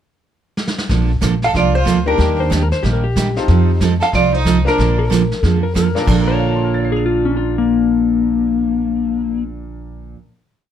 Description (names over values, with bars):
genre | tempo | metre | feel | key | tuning
country, western swing | 185 BPM | 4/4 | swing 63% on 8ths | Bb major | A4 = 442 Hz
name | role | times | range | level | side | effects
vintage brush drum kit | drums | 0.6-6.3 s | brushed snare drum, crash cymbal, hi-hat, kick drum, snare drum | -22 LUFS | equal | none
picked steel-string acoustic guitar | accompaniment | 0.9-10.2 s | Bb2 to A4 | -19 LUFS | right 7 dB | none
upright bass | bass | 0.9-10.1 s | Bb1 to F2 | -18 LUFS | equal | none
vintage hollow-body jazz guitar | melody | 1.4-5.0 s | Bb4 to F5 | -18 LUFS | equal | none
clear fiddle | second line | 1.5-5.0 s | D4 to A4 | -24 LUFS | right 3 dB | none
bright upright piano | accompaniment | 2.1-10.4 s | Bb2 to F7 | -25 LUFS | left 3 dB | none
clean lap steel guitar | second line | 2.4-9.4 s | Bb3 to Db5 | -19 LUFS | left 7 dB | none
room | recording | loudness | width
moderate club ambience, RT60 0.5 s | none | -13 LUFS | side -10 dB against mid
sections
0.0-0.9 pickup bar; 0.9-6.1 A section; 6.1-8.7 final chord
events
drum fill 0.6-0.9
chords
0.0 N.C.; 0.9 Bbmaj7; 3.5 F7; 4.8 Bbmaj7